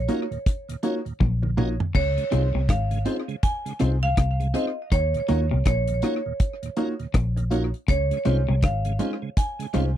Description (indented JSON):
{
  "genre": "lovers rock reggae",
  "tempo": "81 BPM",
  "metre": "4/4",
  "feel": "swing 61% on 16ths",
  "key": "Db major",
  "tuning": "A4 = 440 Hz",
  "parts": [
    { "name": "marimba with hard mallets", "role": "melody", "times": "0.0-10.0 s", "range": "Db5 to Ab5", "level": "-29 LUFS", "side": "right 2 dB", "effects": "tape echo" },
    { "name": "vintage muted fingered electric bass", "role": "bass", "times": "0.0-10.0 s", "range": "Ab1 to Eb2", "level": "-23 LUFS", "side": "equal", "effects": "none" },
    { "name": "FM electric piano", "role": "accompaniment", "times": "0.1-9.9 s", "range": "Eb4 to Db5", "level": "-31 LUFS", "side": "left 7 dB", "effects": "chorus" },
    { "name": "tonewheel organ", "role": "accompaniment", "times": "0.1-9.9 s", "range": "Eb2 to Gb4", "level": "-32 LUFS", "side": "right 6 dB", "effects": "overdrive, chorus vibrato, slow rotary speaker" },
    { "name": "mellow electric guitar", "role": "stabs", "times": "0.1-9.9 s", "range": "Ab3 to Db5", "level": "-28 LUFS", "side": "right 3 dB", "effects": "none" },
    { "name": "deep reggae drum kit", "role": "drums", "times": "0.1-9.9 s", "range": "crash cymbal, hi-hat, kick drum, rim click, toms", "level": "-24 LUFS", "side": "equal", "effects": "none" },
    { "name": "twangy electric guitar", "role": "riff", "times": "1.2-10.0 s", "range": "Ab2 to Eb3", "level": "-32 LUFS", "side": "left 7 dB", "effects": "none" }
  ],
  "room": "little or no reverb",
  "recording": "dry, close 1970s-style studio recording",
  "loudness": "-22 LUFS",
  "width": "side -11 dB against mid",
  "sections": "0.0-10.0 A section",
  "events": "drum fill 1.2-1.9",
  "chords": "0.0 Ebm7; 1.9 Dbmaj7; 4.9 Ebm7; 7.9 Dbmaj7",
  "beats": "0.46 1.21 | 1.95 2.69 3.43 4.18 | 4.92 5.66 6.40 7.14 | 7.89 8.63 9.37"
}